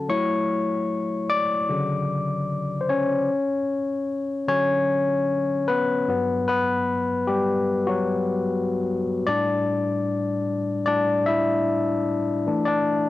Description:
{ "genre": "soul", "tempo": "75 BPM", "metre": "4/4", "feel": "straight", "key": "D major", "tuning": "A4 = 438 Hz", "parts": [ { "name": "barky tine electric piano", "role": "solo", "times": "0.0-13.1 s", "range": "G2 to D6", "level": "-21 LUFS", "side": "left 2 dB", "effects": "overdrive" } ], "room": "light reverb", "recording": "home recording on cassette", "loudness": "-21 LUFS", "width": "side -15 dB against mid", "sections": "0.0-3.3 A section; 3.3-13.1 B section", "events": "tine electric piano solo 0.0-3.3, 3.3-13.1", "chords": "0.1 F#m7; 1.7 Dmaj7; 6.1 Gmaj7; 9.3 A7sus4; 12.5 E7sus4" }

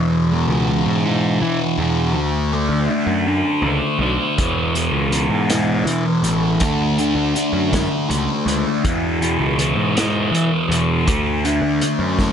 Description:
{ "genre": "psychedelic rock", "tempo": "54 BPM (dotted quarters)", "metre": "6/8", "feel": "straight", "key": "E mixolydian", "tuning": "A4 = 441 Hz", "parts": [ { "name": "thick fuzz guitar", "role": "riff", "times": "0.0-12.3 s", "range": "E2 to D4", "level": "-18 LUFS", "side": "equal", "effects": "distortion, phaser" }, { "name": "fuzz picked electric bass", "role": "bass", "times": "0.0-12.3 s", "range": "A1 to E3", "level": "-21 LUFS", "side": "equal", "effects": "overdrive" }, { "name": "vintage drum kit", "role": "drums", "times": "4.4-12.3 s", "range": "hi-hat, kick drum, snare drum", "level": "-23 LUFS", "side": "equal", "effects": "none" } ], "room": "light reverb, small room reverb", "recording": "nothing above 11.0 kHz", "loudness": "-16 LUFS", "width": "side -8 dB against mid", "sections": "0.0-12.3 A section", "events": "none", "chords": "0.0 E; 2.2 D; 4.4 E; 6.6 D; 8.8 E; 11.1 D" }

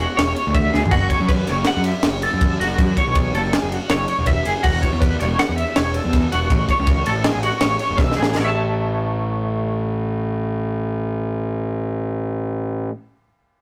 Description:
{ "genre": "math rock and midwest emo", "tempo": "162 BPM", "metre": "5/4", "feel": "straight", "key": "A major", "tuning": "A4 = 440 Hz", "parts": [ { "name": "twelve-string electric guitar", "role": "arpeggios", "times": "0.0-13.0 s", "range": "F#4 to A5", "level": "-25 LUFS", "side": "equal", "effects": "tremolo" }, { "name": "fuzz picked electric bass", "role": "bass", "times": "0.0-12.9 s", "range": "E1 to F#2", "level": "-24 LUFS", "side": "equal", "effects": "overdrive" }, { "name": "crisp fusion drum kit", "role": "drums", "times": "0.2-8.4 s", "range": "crash cymbal, kick drum, ride cymbal, snare drum, splash cymbal, toms", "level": "-23 LUFS", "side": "equal", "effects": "none" } ], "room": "moderate small room reverb, RT60 0.5 s", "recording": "rough rehearsal-room recording, tube saturation", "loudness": "-20 LUFS", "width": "mono", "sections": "0.0-8.4 A section; 8.4-12.1 B section", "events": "drum fill 0.7, 8.0-8.4", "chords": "0.0 E7sus2; 0.9 F#m7; 4.6 Esus24; 6.5 A6; 8.4 A" }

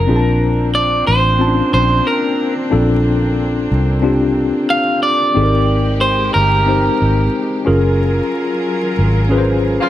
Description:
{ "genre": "R&B, neo-soul", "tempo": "91 BPM", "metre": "4/4", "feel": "swing 54% on 16ths", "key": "Bb major", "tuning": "A4 = 440 Hz", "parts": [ { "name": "electric guitar at the edge of break-up", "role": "melody", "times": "0.0-7.6 s", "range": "Bb4 to F5", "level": "-16 LUFS", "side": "right 1 dB", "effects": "none" }, { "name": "mellow tine electric piano", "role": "accompaniment", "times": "0.0-9.9 s", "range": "C4 to A5", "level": "-17 LUFS", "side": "left 2 dB", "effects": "medium stereo tremolo" }, { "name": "warm chamber string section", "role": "sustained chords", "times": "0.0-9.9 s", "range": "Gb3 to Bb4", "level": "-24 LUFS", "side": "equal", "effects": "none" }, { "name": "vintage muted fingered electric bass", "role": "bass", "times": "0.0-9.8 s", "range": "Gb1 to C2", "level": "-16 LUFS", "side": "equal", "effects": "none" }, { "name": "warm horn section", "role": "stabs", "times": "9.8-9.9 s", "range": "Db3 to F4", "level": "-15 LUFS", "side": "equal", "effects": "none" } ], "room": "light reverb", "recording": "vinyl crackle", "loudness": "-12 LUFS", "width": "side -13 dB against mid", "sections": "0.1-9.9 A section", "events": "band accent 8.0-9.9", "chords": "0.1 Bbmaj9; 5.3 Abmaj9; 7.7 Gbmaj9" }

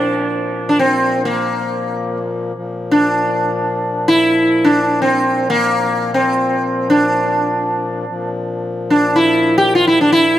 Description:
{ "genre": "indian classical, Hindustani", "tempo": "free time", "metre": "none", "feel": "none", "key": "Bb raga yaman", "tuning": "A4 = 440 Hz", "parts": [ { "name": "sitar", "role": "melody", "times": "0.0-10.4 s", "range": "Bb3 to G4", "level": "-14 LUFS", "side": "equal", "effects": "tape echo" }, { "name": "hand-pumped harmonium", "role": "drone", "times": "0.0-10.4 s", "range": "Bb2 to F3", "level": "-22 LUFS", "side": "left 2 dB", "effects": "none" } ], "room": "moderate recital hall reverb, RT60 1.5 s", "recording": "close, detailed microphones", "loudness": "-13 LUFS", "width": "side -12 dB against mid", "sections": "0.0-2.5 A section; 2.5-10.4 A section", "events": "none", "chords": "none" }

